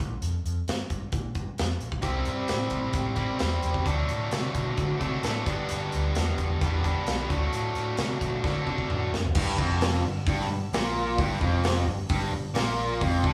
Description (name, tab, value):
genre	blues rock power trio and southern rock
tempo	131 BPM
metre	4/4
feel	straight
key	unclear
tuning	A4 = 439 Hz
part	overdriven picked electric bass	bass	0.0-13.3 s	F1 to D3	-32 LUFS	equal	none
part	big rock drum kit	drums	0.0-13.3 s	crash cymbal, hi-hat, kick drum, snare drum, toms	-33 LUFS	equal	none
part	distorted electric guitar	riff	2.0-13.3 s	F2 to E4	-31 LUFS	equal	overdrive
room	moderate stone room reverb, RT60 1.1 s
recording	band playing live in one room, small room ambience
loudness	-28 LUFS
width	mono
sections	0.0-9.4 A section; 9.4-13.3 B section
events	drum fill 8.4-9.4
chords	0.0 Bb5; 2.0 C; 3.9 D; 5.5 G; 7.3 D; 9.4 Fsus24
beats	| 0.22 0.68 1.13 1.58 | 2.04 2.50 2.95 3.41 | 3.86 4.32 4.77 5.23 | 5.69 6.14 6.60 7.06 | 7.52 7.98 8.44 8.89 | 9.35 9.81 10.27 10.73 | 11.19 11.64 12.10 12.56 | 13.02